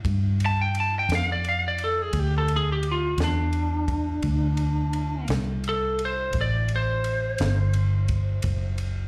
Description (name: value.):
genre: slow blues.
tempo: 57 BPM (dotted quarters).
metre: 12/8.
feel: straight.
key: unclear.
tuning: A4 = 441 Hz.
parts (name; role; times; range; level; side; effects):
compact cocktail drum kit; drums; 0.0-8.9 s; kick drum, ride cymbal, snare drum; -35 LUFS; equal; none.
vintage muted fingered electric bass; bass; 0.1-9.1 s; F#1 to G2; -27 LUFS; equal; none.
lightly driven lead guitar; melody; 0.5-8.8 s; D4 to A5; -29 LUFS; equal; slapback echo.
room: little or no reverb.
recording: live gig heard through the venue's PA, club reverb.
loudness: -25 LUFS.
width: mono.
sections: 0.0-9.1 A section.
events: lead electric guitar solo 0.0-9.1.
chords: 0.0 G5; 4.2 D7.